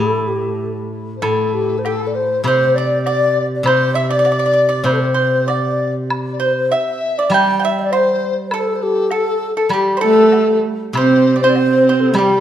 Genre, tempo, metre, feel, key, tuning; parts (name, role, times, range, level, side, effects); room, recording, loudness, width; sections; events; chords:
chinese traditional, Chinese chamber ensemble; 99 BPM; 2/4; rubato; A4 = 437 Hz
breathy low xiao; melody; 0.0-12.4 s; G4 to G5; -18 LUFS; equal
steel-string zither; accompaniment; 0.0-12.4 s; A2 to G3; -20 LUFS; equal
mellow large dizi; second line; 1.2-12.4 s; G4 to G5; -20 LUFS; left 6 dB
pipa; second line; 1.2-12.4 s; G4 to G5; -21 LUFS; right 5 dB
woodblock; percussion; 1.2-12.3 s; -27 LUFS; left 1 dB
clear horsehead fiddle; second line; 10.0-12.4 s; G3 to C4; -15 LUFS; right 5 dB
moderate recital hall reverb, RT60 1.6 s; dark, warm production; -13 LUFS; side -10 dB against mid
0.0-1.2 A section; 1.2-10.9 B section; 10.9-12.4 C section